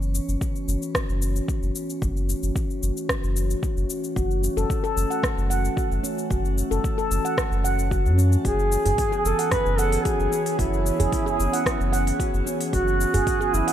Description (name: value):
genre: organic downtempo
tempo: 112 BPM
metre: 4/4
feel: straight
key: F# minor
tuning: A4 = 440 Hz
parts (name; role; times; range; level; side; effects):
- warbly tape-like pad; sustained chords; 0.0-13.7 s; E3 to C#5; -30 LUFS; equal; chorus, built-in reverb, sidechain pumping, shimmer reverb
- warm sub bass; bass; 0.0-13.6 s; F#1 to F#2; -23 LUFS; equal; sidechain pumping
- deep house drum kit; drums; 0.0-13.7 s; cabasa, hi-hat, rim click; -30 LUFS; left 1 dB; studio reverb
- electronic kick drum; drums; 0.4-13.4 s; none; -28 LUFS; equal; studio reverb
- handpan; arpeggios; 4.2-13.7 s; C#4 to F#5; -27 LUFS; right 2 dB; digital delay, shimmer reverb
- mellow duduk; melody; 8.5-13.7 s; E4 to B4; -25 LUFS; right 1 dB; tape echo, shimmer reverb
- udu; percussion; 8.9-13.2 s; none; -29 LUFS; right 1 dB; none
room: light reverb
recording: none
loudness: -21 LUFS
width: side -10 dB against mid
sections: 0.0-13.7 A section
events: none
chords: 0.0 F#m7; 8.4 C#m7/F#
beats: 0.41 0.95 1.48 | 2.02 2.56 3.09 3.63 | 4.16 4.70 5.23 5.77 | 6.30 6.84 7.38 7.91 | 8.45 8.98 9.52 10.05 | 10.59 11.13 11.66 12.20 | 12.73 13.27